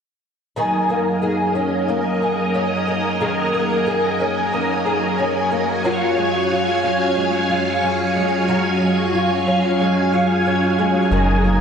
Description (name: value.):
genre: dream pop.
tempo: 91 BPM.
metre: 4/4.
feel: straight.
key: Gb major.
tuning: A4 = 440 Hz.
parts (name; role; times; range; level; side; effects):
string machine, full ensemble; sustained chords; 0.6-11.6 s; Gb3 to Ab5; -19 LUFS; right 1 dB; ensemble chorus.
fingerpicked twelve-string acoustic guitar; arpeggios; 0.6-11.6 s; Eb3 to Ab4; -19 LUFS; left 1 dB; ensemble chorus, ping-pong delay.
round analog bass; bass; 11.1-11.6 s; Gb1; -18 LUFS; equal; none.
room: wet lush hall reverb, RT60 1.8 s.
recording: none.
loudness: -16 LUFS.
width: side -7 dB against mid.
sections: 0.6-11.6 A section.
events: none.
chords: 0.6 Gb69; 5.8 Dbadd11/Gb.